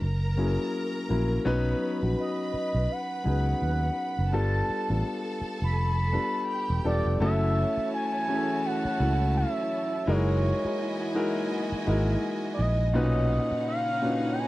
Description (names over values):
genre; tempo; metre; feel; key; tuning
lush 1970s-style soul; 84 BPM; 4/4; swing 58% on 16ths; F# minor; A4 = 440 Hz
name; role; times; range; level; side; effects
warm symphonic violin section; second line; 0.0-14.5 s; D#4 to B5; -37 LUFS; right 2 dB; none
warm grand piano; accompaniment; 0.0-14.5 s; A#2 to B4; -30 LUFS; left 2 dB; none
fingered electric bass; bass; 0.0-13.5 s; E1 to D#2; -26 LUFS; equal; none
expressive synth lead; melody; 2.2-14.5 s; C#5 to B5; -30 LUFS; right 1 dB; chorus
warm studio string section; sustained chords; 7.2-14.5 s; C#3 to B4; -39 LUFS; equal; none
room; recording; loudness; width
little or no reverb; dry, close 1970s-style studio recording; -25 LUFS; side -17 dB against mid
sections
0.0-7.2 A section; 7.2-14.5 B section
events
none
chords
0.0 F#7; 1.5 Badd9; 4.3 G9; 7.2 F#m9; 10.1 F#13; 12.9 Bmaj9